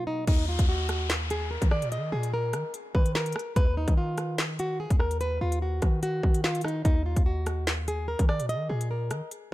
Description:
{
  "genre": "hip hop, drill",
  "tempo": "146 BPM",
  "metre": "4/4",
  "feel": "half-time",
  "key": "Eb harmonic minor",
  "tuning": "A4 = 443 Hz",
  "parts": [
    { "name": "flamenco guitar", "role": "melody", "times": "0.0-9.3 s", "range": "D#4 to Eb5", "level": "-31 LUFS", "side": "equal", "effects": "digital delay" },
    { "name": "hard-hitting 808-style bass", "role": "bass", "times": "0.3-9.2 s", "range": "Eb2 to Eb3", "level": "-30 LUFS", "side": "equal", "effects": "none" },
    { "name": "drill drum kit", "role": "drums", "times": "0.3-9.4 s", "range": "crash cymbal, handclaps, hi-hat, kick drum, rim click, snare drum", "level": "-26 LUFS", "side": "equal", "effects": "none" },
    { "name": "downlifter", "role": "sound effects", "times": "0.3-3.6 s", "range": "none", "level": "-38 LUFS", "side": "left 3 dB", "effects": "none" }
  ],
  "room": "digital ambience",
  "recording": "none",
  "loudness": "-25 LUFS",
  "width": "side -16 dB against mid",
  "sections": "0.3-9.5 A section",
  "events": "break 0.0",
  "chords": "0.3 Eb5; 3.6 Ebmadd9; 6.9 Eb5"
}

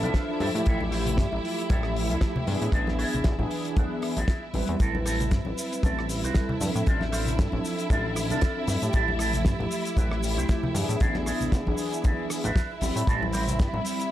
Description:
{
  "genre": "nu-disco, nu disco",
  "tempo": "116 BPM",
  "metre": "4/4",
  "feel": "swing 56% on 16ths",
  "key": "A minor",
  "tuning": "A4 = 442 Hz",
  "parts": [
    { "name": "mellow synth brass", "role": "accompaniment", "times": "0.0-14.1 s", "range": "E3 to B5", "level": "-30 LUFS", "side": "equal", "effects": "chorus, tape echo" },
    { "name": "rich symphonic string section", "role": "sustained chords", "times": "0.0-14.1 s", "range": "E4 to E5", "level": "-34 LUFS", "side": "right 1 dB", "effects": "sidechain pumping" },
    { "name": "electric guitar with an envelope filter", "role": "riff", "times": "0.0-13.9 s", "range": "C4 to A5", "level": "-34 LUFS", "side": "right 3 dB", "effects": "wide subtle chorus, tape echo" },
    { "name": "chorused synth bass", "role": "bass", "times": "0.0-13.8 s", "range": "A1 to A2", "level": "-29 LUFS", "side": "equal", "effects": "tube saturation" },
    { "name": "damped 70s drum kit", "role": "drums", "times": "0.0-14.1 s", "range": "hi-hat, rim click, shaker, snare drum", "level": "-34 LUFS", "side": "left 1 dB", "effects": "studio reverb" },
    { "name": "congas", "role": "percussion", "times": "0.0-13.8 s", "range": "none", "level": "-36 LUFS", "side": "left 2 dB", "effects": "none" },
    { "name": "kick drum", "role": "drums", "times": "0.1-13.7 s", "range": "none", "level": "-24 LUFS", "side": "equal", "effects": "studio reverb" }
  ],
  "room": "small room ambience",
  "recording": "dry, gritty hardware recording",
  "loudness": "-24 LUFS",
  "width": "side -13 dB against mid",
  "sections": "0.0-14.1 A section",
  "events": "clean electric guitar fill 0.0-0.7",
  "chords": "0.0 Dm7; 0.7 Fmaj9/A; 2.7 E7/A; 4.8 Am7; 6.9 Dm7/A; 8.9 Fmaj9/A; 11.0 E7/A; 13.1 Am7"
}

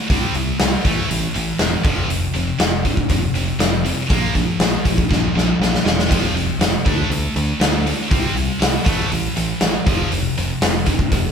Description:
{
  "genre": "hard rock",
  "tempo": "120 BPM",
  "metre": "4/4",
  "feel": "straight",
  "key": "unclear",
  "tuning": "A4 = 440 Hz",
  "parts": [
    { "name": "heavy high-gain guitar", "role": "riff", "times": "0.0-11.3 s", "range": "F2 to D4", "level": "-22 LUFS", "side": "equal", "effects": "distortion" },
    { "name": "picked electric bass", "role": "bass", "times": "0.1-11.3 s", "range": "E1 to D2", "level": "-23 LUFS", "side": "equal", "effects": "none" },
    { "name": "huge arena drum kit", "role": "drums", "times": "0.1-11.2 s", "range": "crash cymbal, hi-hat, kick drum, snare drum", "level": "-18 LUFS", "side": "equal", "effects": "none" }
  ],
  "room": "light reverb",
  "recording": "band playing live in one room",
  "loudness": "-16 LUFS",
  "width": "side -7 dB against mid",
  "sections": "0.0-11.3 A section",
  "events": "drum fill 5.1-6.1",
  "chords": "0.1 C5; 0.8 A5; 1.9 F5; 4.1 Bb5; 6.1 F5; 6.9 D5; 8.1 C5; 8.9 A5; 9.9 F5"
}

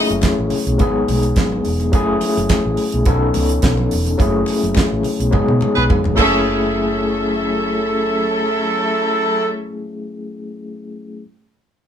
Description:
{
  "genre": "disco",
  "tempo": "106 BPM",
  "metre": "4/4",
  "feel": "straight",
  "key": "F# dorian",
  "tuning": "A4 = 440 Hz",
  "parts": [
    { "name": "bright studio string section", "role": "second line", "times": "0.0-0.1, 6.2-9.5 s", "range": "C#4 to E5", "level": "-22 LUFS", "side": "left 1 dB", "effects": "none" },
    { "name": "overdriven tine electric piano", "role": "accompaniment", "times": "0.0-11.2 s", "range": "F#3 to A4", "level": "-19 LUFS", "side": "left 2 dB", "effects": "medium tremolo" },
    { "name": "hollow-body short-scale fingered electric bass", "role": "bass", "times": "0.1-9.7 s", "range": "E1 to B2", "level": "-21 LUFS", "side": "right 1 dB", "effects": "none" },
    { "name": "damped 70s drum kit", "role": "drums", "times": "0.1-6.3 s", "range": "crash cymbal, handclaps, hi-hat, kick drum, snare drum, toms", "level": "-20 LUFS", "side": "right 1 dB", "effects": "none" },
    { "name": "congas", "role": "percussion", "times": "0.2-6.7 s", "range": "none", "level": "-29 LUFS", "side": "left 2 dB", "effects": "none" },
    { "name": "cowbell", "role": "percussion", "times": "0.2-6.7 s", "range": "none", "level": "-32 LUFS", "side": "right 5 dB", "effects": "none" },
    { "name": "warm horn section", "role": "stabs", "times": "5.8-9.5 s", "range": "F#3 to B4", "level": "-20 LUFS", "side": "right 2 dB", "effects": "none" }
  ],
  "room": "moderate small room reverb, RT60 0.5 s",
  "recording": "band playing live in one room",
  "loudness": "-15 LUFS",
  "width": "side -9 dB against mid",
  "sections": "0.0-6.5 A section; 6.5-8.7 B section",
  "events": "band accent 4.2-6.5; drum fill 5.3-6.5",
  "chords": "0.0 F#m7; 0.8 G#m7; 1.9 F#m7; 3.1 B7; 4.2 F#m7; 5.3 G#m7; 6.2 F#m7"
}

